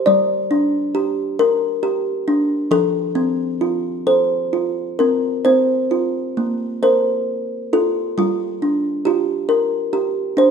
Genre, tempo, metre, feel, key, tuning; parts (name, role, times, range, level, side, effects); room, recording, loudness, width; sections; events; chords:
children's music, lullaby; 45 BPM (dotted quarters); 6/8; rubato; Bb major; A4 = 440 Hz
kalimba; solo; 0.0-10.5 s; F3 to D5; -16 LUFS; equal
moderate recital hall reverb, RT60 1.2 s; -16 LUFS; side -6 dB against mid
0.0-5.4 A section; 5.4-10.5 A section
0.1 Gm; 2.7 F; 5.4 Bbsus2; 8.2 Gm